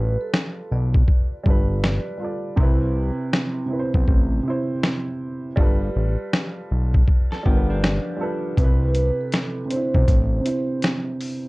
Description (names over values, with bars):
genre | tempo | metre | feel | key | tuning
lo-fi hip hop | 80 BPM | 4/4 | swing 65% on 16ths | C major | A4 = 441 Hz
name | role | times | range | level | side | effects
vibraphone with soft mallets | melody | 0.0-2.2, 8.6-10.8 s | A4 to D5 | -30 LUFS | right 2 dB | low-pass filter, analog delay
dark upright piano | accompaniment | 0.0-11.5 s | C3 to D5 | -26 LUFS | right 2 dB | cassette tape, low-pass filter
fat analog bass | bass | 0.0-10.4 s | G1 to C2 | -21 LUFS | equal | none
trip hop sampler-style drum kit | drums | 0.3-11.4 s | hi-hat, kick drum, snare drum | -19 LUFS | equal | none
electric guitar through a small old amp | second line | 7.3-8.5 s | F3 to A4 | -31 LUFS | left 2 dB | spring reverb, low-pass filter, analog delay
room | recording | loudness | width
light reverb | dark, warm production | -19 LUFS | side -23 dB against mid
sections
0.0-11.5 A section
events
break 0.0-8.6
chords
0.0 G9; 2.6 Cmaj7; 5.6 G9; 8.6 Cmaj7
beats
0.33 1.08 1.83 | 2.58 3.33 4.08 4.83 | 5.58 6.33 7.08 7.83 | 8.58 9.33 10.08 10.83